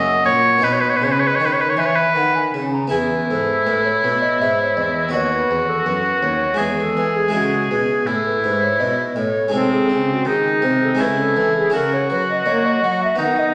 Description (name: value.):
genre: classical, baroque-style sonata movement with continuo.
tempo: 82 BPM.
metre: 3/4.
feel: straight.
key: E major.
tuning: A4 = 439 Hz.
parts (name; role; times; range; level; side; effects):
clear oboe; melody; 0.0-13.5 s; B#3 to D#5; -21 LUFS; equal; none.
baroque flute; second line; 0.0-13.5 s; F#4 to A#5; -24 LUFS; equal; none.
harpsichord; accompaniment; 0.0-13.5 s; D#2 to G#4; -25 LUFS; equal; none.
warm cello; bass; 0.0-13.5 s; D#2 to A#3; -29 LUFS; equal; none.
room: wet recital hall reverb, RT60 1.4 s.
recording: none.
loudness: -18 LUFS.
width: mono.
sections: 0.0-2.9 A section; 2.9-13.5 A section.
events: none.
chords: 0.0 F#; 0.6 B; 2.9 E; 5.1 B/D#; 6.6 E; 7.3 C#m; 9.5 G#/B#; 11.0 C#m; 11.7 F#7/C#.